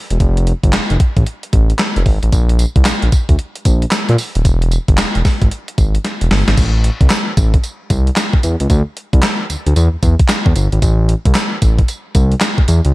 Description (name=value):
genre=R&B, new jack swing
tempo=113 BPM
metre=4/4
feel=swing 63% on 16ths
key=A minor from 6.6 s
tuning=A4 = 442 Hz
part: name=smooth synth bass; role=bass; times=0.1-12.9 s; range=Eb1 to Bb2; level=-13 LUFS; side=equal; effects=none
part: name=gated 80s digital drum machine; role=drums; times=0.1-12.9 s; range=crash cymbal, handclaps, hi-hat, kick drum, snare drum, tambourine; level=-14 LUFS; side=equal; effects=gated reverb, gated reverb snare
room=little or no reverb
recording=none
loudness=-12 LUFS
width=side -20 dB against mid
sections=0.0-6.6 A section; 6.6-12.9 B section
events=drum fill 6.0-6.6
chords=none